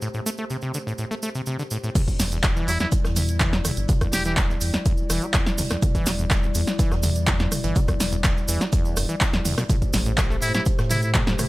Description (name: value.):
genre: acid house.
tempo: 124 BPM.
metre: 4/4.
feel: straight.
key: E minor.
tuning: A4 = 440 Hz.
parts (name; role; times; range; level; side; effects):
dark analog pad; sustained chords; 0.0-11.5 s; G3 to D5; -32 LUFS; left 1 dB; chorus, sidechain pumping.
acid bass, saw; riff; 0.0-11.5 s; E2 to A3; -29 LUFS; equal; overdrive, sidechain pumping, dub echo.
cabasa; percussion; 0.0-11.5 s; none; -34 LUFS; right 3 dB; none.
electronic kick drum; drums; 2.0-11.2 s; none; -23 LUFS; equal; studio reverb.
open jazz drum kit; drums; 2.0-11.5 s; hi-hat, shaker, snare drum; -37 LUFS; right 3 dB; none.
punchy analog drum machine; drums; 2.0-11.5 s; crash cymbal, handclaps, hi-hat, rim click, snare drum, toms; -25 LUFS; equal; overdrive, studio reverb.
round analog bass; bass; 2.2-11.4 s; E1 to A2; -26 LUFS; equal; sidechain pumping.
trumpet with metal mute; melody; 2.7-4.3, 10.4-11.1 s; E4 to G4; -28 LUFS; equal; dub echo.
room: little or no reverb.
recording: none.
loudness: -20 LUFS.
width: side -19 dB against mid.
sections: 0.0-2.0 A section; 2.0-11.5 B section.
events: drop 2.0-11.5.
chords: 0.0 Am7; 2.0 Em7; 9.7 Am7.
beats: | 0.02 0.50 0.99 1.47 | 1.95 2.44 2.92 3.40 | 3.89 4.37 4.86 5.34 | 5.82 6.31 6.79 7.28 | 7.76 8.24 8.73 9.21 | 9.70 10.18 10.66 11.15.